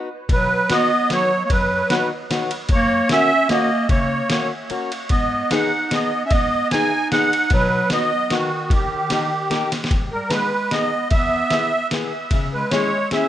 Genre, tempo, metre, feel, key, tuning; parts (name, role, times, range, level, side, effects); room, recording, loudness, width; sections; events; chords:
alpine folk, alpine dance band; 150 BPM; 3/4; swing 53% on 8ths; B major, G# harmonic minor from 9.9 s; A4 = 436 Hz
fingerpicked plugged-in steel-string acoustic guitar; accompaniment; 0.0-13.3 s; E2 to G#4; -26 LUFS; left 5 dB
musette accordion; melody; 0.3-13.3 s; F#4 to G#5; -20 LUFS; right 2 dB; tape echo
warm clarinet; second line; 0.3-13.3 s; D#3 to D#4; -24 LUFS; right 1 dB; tape echo
trip hop sampler-style drum kit; drums; 0.3-13.2 s; kick drum, ride cymbal, snare drum; -23 LUFS; equal
light reverb; rough home demo mix, nothing above 10.4 kHz; -17 LUFS; side -12 dB against mid
0.3-9.9 A section; 9.9-13.3 B section
break 4.7-5.1; drum fill 9.7
0.3 B; 2.7 F#; 5.1 G#m7; 7.5 B; 8.7 D#; 9.9 G#m; 11.1 E; 12.3 C#m